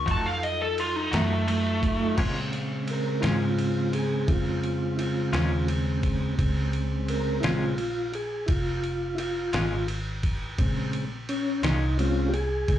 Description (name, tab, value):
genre	slow blues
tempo	57 BPM (dotted quarters)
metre	12/8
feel	straight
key	Bb minor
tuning	A4 = 441 Hz
part	lead guitar through a small cranked amp	melody	0.0-2.2 s	A3 to A5	-26 LUFS	right 1 dB	overdrive, slapback echo
part	mellow tonewheel organ	sustained chords	0.0-12.8 s	Db3 to Bb4	-28 LUFS	equal	slow rotary speaker
part	vintage muted fingered electric bass	bass	0.0-12.8 s	F1 to Bb2	-30 LUFS	equal	none
part	semi-hollow electric guitar	accompaniment	0.1-11.9 s	Bb2 to Gb4	-32 LUFS	left 4 dB	tremolo, slapback echo
part	dusty soul sampler-style drum kit	drums	0.1-12.8 s	crash cymbal, kick drum, ride cymbal, snare drum	-31 LUFS	equal	none
room	light reverb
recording	live gig heard through the venue's PA, club reverb, nothing above 10.9 kHz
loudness	-24 LUFS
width	side -11 dB against mid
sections	0.0-2.2 A section; 2.2-12.8 A section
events	lead electric guitar solo 0.0-2.2; tonewheel organ solo 2.2-12.8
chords	0.1 F7b9; 2.2 Bbm7